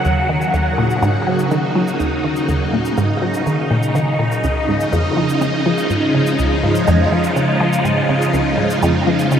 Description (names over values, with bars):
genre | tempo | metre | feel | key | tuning
ambient, sequencer-driven space music | 123 BPM | 4/4 | straight | Eb minor | A4 = 440 Hz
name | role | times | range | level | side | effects
phased string machine | sustained chords | 0.0-9.4 s | Db3 to Gb4 | -17 LUFS | equal | ensemble chorus, phaser, shimmer reverb
shaker and woodblock | percussion | 0.0-9.4 s | none | -36 LUFS | left 4 dB | tape echo
resonant blip pluck | riff | 0.1-9.4 s | Db2 to Gb3 | -18 LUFS | equal | phaser, analog chorus, tape echo, shimmer reverb
room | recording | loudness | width
wet huge ambient reverb, RT60 9.0 s | none | -14 LUFS | side -8 dB against mid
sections
0.0-9.4 A section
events
fade-in on drum 0.0-9.4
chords
0.0 Ebm7; 4.4 Dbadd9